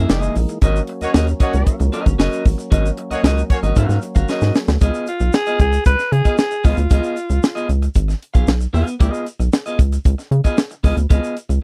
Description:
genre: funk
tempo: 114 BPM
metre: 4/4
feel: straight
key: Db mixolydian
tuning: A4 = 440 Hz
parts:
  - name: clean electric guitar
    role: accompaniment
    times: 0.0-11.5 s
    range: Bb3 to F5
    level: -26 LUFS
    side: equal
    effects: none
  - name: tonewheel organ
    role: sustained chords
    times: 0.0-4.8 s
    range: Fb3 to Eb4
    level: -31 LUFS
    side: equal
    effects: overdrive, lush chorus
  - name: rubbery square bass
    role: bass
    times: 0.0-11.6 s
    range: Gb1 to Db3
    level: -19 LUFS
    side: equal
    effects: none
  - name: tight funk drum kit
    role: drums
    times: 0.1-11.6 s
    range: hi-hat, kick drum, snare drum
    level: -18 LUFS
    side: equal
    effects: none
  - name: tube shaker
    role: percussion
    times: 0.1-11.6 s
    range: none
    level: -43 LUFS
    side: equal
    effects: none
  - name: warm horn section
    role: second line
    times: 1.0-3.6 s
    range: Bb3 to Db5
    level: -26 LUFS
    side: equal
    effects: none
  - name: growling alto saxophone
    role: melody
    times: 5.1-7.7 s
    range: F4 to Cb5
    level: -23 LUFS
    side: equal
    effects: none
room: little or no reverb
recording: dry, close 1970s-style studio recording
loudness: -17 LUFS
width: mono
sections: 0.0-4.8 A section; 4.8-11.6 B section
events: drum fill 4.3-4.8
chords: 0.0 Gb13; 0.6 Ab9sus4; 4.8 Db9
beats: 0.10 | 0.62 1.15 1.67 2.19 | 2.72 3.24 3.76 4.29 | 4.81 5.33 5.86 6.38 | 6.91 7.43 7.96 8.48 | 9.00 9.53 10.05 10.58 | 11.10

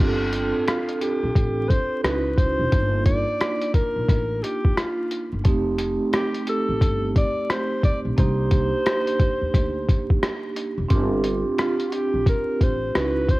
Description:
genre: hip hop, jazz-hop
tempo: 88 BPM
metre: 4/4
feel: swing 62% on 16ths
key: unclear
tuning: A4 = 440 Hz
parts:
  - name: vibraphone with soft mallets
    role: accompaniment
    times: 0.0-13.4 s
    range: A3 to A4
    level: -26 LUFS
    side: right 3 dB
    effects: cassette tape
  - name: upright bass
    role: bass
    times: 0.0-13.4 s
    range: Fb1 to Eb2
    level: -26 LUFS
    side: equal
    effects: none
  - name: lo-fi sampler-style drum kit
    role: drums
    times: 0.0-13.4 s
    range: hi-hat, kick drum, rim click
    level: -21 LUFS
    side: equal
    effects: vintage 12-bit sampler grit, cassette tape
  - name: breathy alto saxophone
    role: melody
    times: 0.7-13.4 s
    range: F4 to D5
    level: -26 LUFS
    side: left 1 dB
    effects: cassette tape
room: light reverb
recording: home recording on cassette, vinyl crackle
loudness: -20 LUFS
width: side -20 dB against mid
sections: 0.0-10.9 A section; 10.9-13.4 A section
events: none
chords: 0.0 G9sus4; 2.0 Dbm11; 2.7 Ebmaj9/G; 5.5 F9; 8.2 Cm7; 10.9 G9sus4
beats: | 0.00 0.68 1.36 2.04 | 2.72 3.40 4.09 4.77 | 5.45 6.13 6.81 7.50 | 8.18 8.86 9.54 10.22 | 10.90 11.59 12.27 12.95

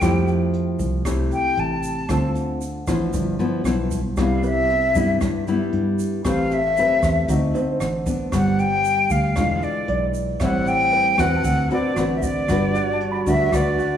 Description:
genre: bossa nova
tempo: 116 BPM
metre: 4/4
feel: straight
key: G major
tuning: A4 = 439 Hz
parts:
  - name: breathy bright silver concert flute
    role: melody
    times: 0.0-14.0 s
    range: D5 to A5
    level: -22 LUFS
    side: left 1 dB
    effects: none
  - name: nylon-string guitar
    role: accompaniment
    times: 0.0-14.0 s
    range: G2 to B4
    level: -22 LUFS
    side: left 2 dB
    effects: none
  - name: fingered electric bass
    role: bass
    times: 0.0-13.8 s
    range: E1 to G2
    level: -25 LUFS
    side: right 1 dB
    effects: none
  - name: jazz brush drum kit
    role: drums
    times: 0.0-13.9 s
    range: hi-hat, kick drum, rim click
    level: -30 LUFS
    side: right 1 dB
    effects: none
  - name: egg shaker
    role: percussion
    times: 0.0-14.0 s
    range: none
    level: -42 LUFS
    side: right 7 dB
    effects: none
  - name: warm grand piano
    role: accompaniment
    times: 4.4-14.0 s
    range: C4 to B5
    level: -30 LUFS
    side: right 5 dB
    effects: none
  - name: breathy trombone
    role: second line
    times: 12.5-14.0 s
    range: F#4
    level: -27 LUFS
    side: right 3 dB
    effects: none
room: wet recital hall reverb, RT60 1.5 s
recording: recorded in a church or concert hall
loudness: -18 LUFS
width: side -9 dB against mid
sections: 0.0-12.5 A section; 12.5-14.0 B section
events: flute solo 0.0-12.5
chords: 0.0 Fmaj9; 2.1 Dm7; 3.1 G6; 4.2 Cmaj7; 6.2 Am9; 7.3 D7b9; 8.3 G; 9.4 E7b9; 10.4 Am7; 11.4 D13; 12.5 Gmaj7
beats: | 0.01 0.54 1.05 1.57 | 2.09 2.61 3.13 3.65 | 4.17 4.69 5.21 5.73 | 6.25 6.77 7.29 7.81 | 8.33 8.85 9.37 9.88 | 10.40 10.93 11.44 11.96 | 12.48 13.00 13.53

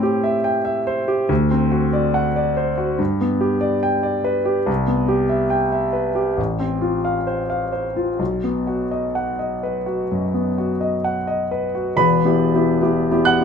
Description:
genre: classical, romantic character piece for solo piano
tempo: 62-74 BPM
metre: 4/4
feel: rubato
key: E minor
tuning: A4 = 441 Hz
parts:
  - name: warm concert grand piano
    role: solo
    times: 0.0-13.4 s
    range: E1 to F#6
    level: -18 LUFS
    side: equal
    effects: none
room: light reverb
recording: none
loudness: -18 LUFS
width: side -6 dB against mid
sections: 0.0-12.0 A section; 12.0-13.4 B section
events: none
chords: 0.0 Am7; 1.3 D7; 3.0 G; 4.7 Cmaj7; 6.4 F/A; 8.2 B; 12.0 Em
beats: 0.45 | 1.30 2.15 2.99 3.83 | 4.68 5.53 6.38 7.26 | 8.19 9.15 10.10 11.04 | 11.96 12.83

